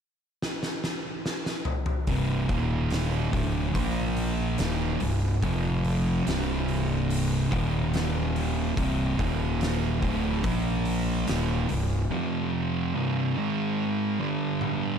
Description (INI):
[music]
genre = stoner and doom metal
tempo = 72 BPM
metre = 4/4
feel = straight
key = C minor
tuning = A4 = 440 Hz
[part]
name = oversized low-tuned drum kit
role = drums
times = 0.4-14.8 s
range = hi-hat, kick drum, snare drum, toms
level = -32 LUFS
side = equal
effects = none
[part]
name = thick fuzz guitar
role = riff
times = 2.1-15.0 s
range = C2 to Bb3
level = -30 LUFS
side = left 9 dB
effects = distortion
[part]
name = thick fuzz guitar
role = riff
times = 2.1-15.0 s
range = C2 to Bb3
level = -28 LUFS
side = right 8 dB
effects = distortion
[part]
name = fuzz fingered electric bass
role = bass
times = 2.1-12.1 s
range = C1 to Bb1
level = -30 LUFS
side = left 1 dB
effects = overdrive
[sound]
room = light reverb, small room ambience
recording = dark, warm production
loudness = -25 LUFS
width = side -7 dB against mid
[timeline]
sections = 0.0-2.1 A section; 2.1-15.0 B section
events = drum fill 0.4-2.1, 14.6-15.0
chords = 0.0 N.C.; 2.1 C5; 2.5 Eb5; 3.3 D5; 3.7 Bb5; 4.6 Cm; 5.4 F5; 6.3 C5; 7.5 Eb5; 8.8 C5; 9.2 Eb5; 10.0 D5; 10.4 Bb5; 11.3 Cm; 12.1 F5; 12.9 C5; 13.4 Ab5; 14.2 G5